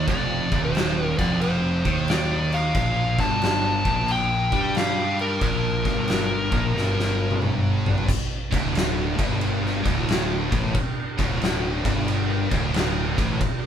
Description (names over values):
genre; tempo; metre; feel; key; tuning
stoner and doom metal; 90 BPM; 4/4; swing 66% on 8ths; D phrygian; A4 = 440 Hz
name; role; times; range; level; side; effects
fuzz lead guitar; melody; 0.0-7.4 s; Bb4 to A5; -26 LUFS; left 2 dB; distortion
heavy high-gain guitar; riff; 0.0-13.4 s; D2 to G3; -30 LUFS; equal; distortion
thick fuzz guitar; riff; 0.0-13.4 s; D2 to G3; -30 LUFS; left 4 dB; distortion
thick fuzz guitar; riff; 0.0-13.4 s; D2 to G3; -30 LUFS; right 6 dB; distortion
fuzz fingered electric bass; bass; 0.0-13.4 s; D1 to G2; -28 LUFS; equal; overdrive
oversized low-tuned drum kit; drums; 0.1-13.6 s; crash cymbal, kick drum, ride cymbal, snare drum, toms; -25 LUFS; equal; none
room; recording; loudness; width
light reverb; band playing live in one room; -20 LUFS; side -9 dB against mid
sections
0.0-8.1 A section; 8.1-13.7 B section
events
drum fill 6.8-8.1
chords
0.0 F5; 2.8 Gm; 8.1 D5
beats
| 0.08 0.75 1.42 2.08 | 2.75 3.42 4.08 4.75 | 5.42 6.08 6.75 7.42 | 8.09 8.75 9.42 10.09 | 10.75 11.42 12.08 12.75 | 13.42